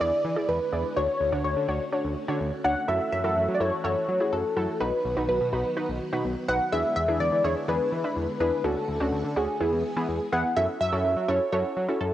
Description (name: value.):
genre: synth-pop.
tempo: 125 BPM.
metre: 4/4.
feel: straight.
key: F# minor.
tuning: A4 = 440 Hz.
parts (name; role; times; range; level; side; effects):
funky polysynth comp; melody; 0.0-12.1 s; G#4 to F#5; -26 LUFS; equal; chorus, cassette tape, tape echo.
warbly dusty pluck; accompaniment; 0.0-12.1 s; B3 to D5; -30 LUFS; right 1 dB; chorus, cassette tape.
string machine, violins; sustained chords; 0.0-10.6 s; D3 to G#4; -36 LUFS; left 1 dB; ensemble chorus, cassette tape.
fat analog bass; bass; 0.0-12.1 s; B1 to F#3; -30 LUFS; equal; none.
room: moderate lush hall reverb, RT60 2.8 s.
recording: home recording on cassette.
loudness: -24 LUFS.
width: side -12 dB against mid.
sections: 0.0-10.6 A section; 10.6-12.1 A section.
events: none.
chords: 0.0 E7; 1.0 Dmaj7; 2.9 F#m7; 4.8 B; 6.7 E7; 8.6 Dmaj7; 9.6 E; 10.6 F#m7.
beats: 0.01 0.48 | 0.96 1.45 1.93 2.40 | 2.88 3.37 3.85 4.33 | 4.80 5.29 5.76 6.25 | 6.72 7.21 7.68 8.16 | 8.64 9.12 9.61 10.09 | 10.56 11.04 11.53 12.01.